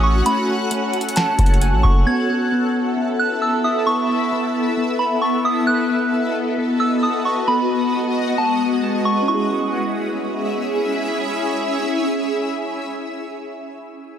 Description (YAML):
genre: hip hop, atmospheric cloud-rap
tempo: 133 BPM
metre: 4/4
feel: half-time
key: C# minor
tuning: A4 = 439 Hz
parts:
  - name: soft synth bell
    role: melody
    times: 0.0-10.6 s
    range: A5 to G#6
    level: -22 LUFS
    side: right 1 dB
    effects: chorus, low-pass filter, tape echo
  - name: shimmering ambient pad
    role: sustained chords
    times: 0.0-13.6 s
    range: G#3 to F#5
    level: -21 LUFS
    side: left 1 dB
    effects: chorus, built-in reverb, phaser
  - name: muted felt-like synth keys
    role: arpeggios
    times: 0.0-13.6 s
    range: A3 to A5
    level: -25 LUFS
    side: right 1 dB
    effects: chorus, low-pass filter, tape echo
  - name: long sustained 808-style bass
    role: bass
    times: 0.0-2.1 s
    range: F#1 to A1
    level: -17 LUFS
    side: equal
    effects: none
  - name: booming analog drum machine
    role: drums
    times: 0.3-2.0 s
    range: hi-hat, kick drum, snare drum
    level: -17 LUFS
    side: equal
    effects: none
room: moderate lush hall reverb, RT60 2.3 s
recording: none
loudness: -17 LUFS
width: side -9 dB against mid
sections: 0.0-9.3 A section; 9.3-12.9 B section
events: none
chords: 0.0 F#madd9; 2.1 Asus2; 5.7 B7; 9.3 C#m